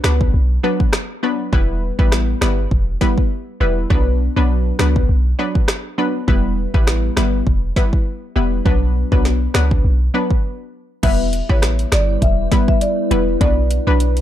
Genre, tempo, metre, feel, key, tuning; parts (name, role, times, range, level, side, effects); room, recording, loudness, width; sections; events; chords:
dancehall; 101 BPM; 4/4; swing 56% on 16ths; A4 = 440 Hz
analog pluck; accompaniment; 0.0-14.0 s; F#3 to B4; -21 LUFS; left 1 dB; chorus
clean 808-style bass; bass; 0.0-14.2 s; E1 to C#2; -17 LUFS; equal
afro-pop drum kit; drums; 0.0-14.2 s; crash cymbal, hi-hat, kick drum, rim click, snare drum; -18 LUFS; equal
marimba with medium mallets; melody; 11.0-14.0 s; B4 to E5; -22 LUFS; equal; digital delay
glassy FM pad; sustained chords; 11.8-14.2 s; F#3 to B4; -24 LUFS; left 2 dB; ensemble chorus, built-in reverb, phaser, sidechain pumping
little or no reverb; dark, warm production; -15 LUFS; side -12 dB against mid
0.0-11.0 A section; 11.0-14.2 B section
break 10.4-11.0
0.0 Bm; 1.5 Em; 3.9 Bm; 6.3 Em; 8.7 Bm; 11.0 Em; 13.4 Bm